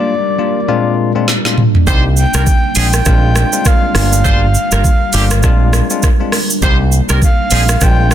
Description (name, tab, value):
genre	afrobeats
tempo	101 BPM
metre	4/4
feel	swing 58% on 16ths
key	unclear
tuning	A4 = 439 Hz
part	breathy flute-like synth lead	melody	0.0-8.1 s	D5 to G5	-19 LUFS	equal	chorus, digital delay
part	bell-like tine electric piano	accompaniment	0.0-8.1 s	Bb2 to G4	-19 LUFS	left 6 dB	none
part	deep dark ambient pad	sustained chords	0.0-8.1 s	G3 to Bb4	-21 LUFS	equal	chorus, built-in reverb
part	afro-pop drum kit	drums	1.3-8.1 s	hi-hat, kick drum, rim click, shaker, snare drum, toms	-13 LUFS	right 1 dB	soft clipping on snare
part	warm horn section	second line	1.9-7.6 s	D3 to C5	-21 LUFS	right 2 dB	none
part	fingered electric bass with an envelope filter	bass	1.9-8.1 s	G1 to C2	-12 LUFS	right 1 dB	none
room	little or no reverb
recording	dense, heavily limited modern master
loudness	-10 LUFS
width	side -11 dB against mid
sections	0.0-8.1 A section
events	drum fill 1.3-1.9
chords	0.0 Gm7; 0.7 Bb7; 1.9 Cm; 2.8 Bb7; 4.0 Gm7; 5.4 Bb7; 6.6 Cm; 7.5 Bb7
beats	0.09 0.69 1.28 | 1.87 2.47 3.06 3.65 | 4.25 4.84 5.44 6.03 | 6.62 7.22 7.81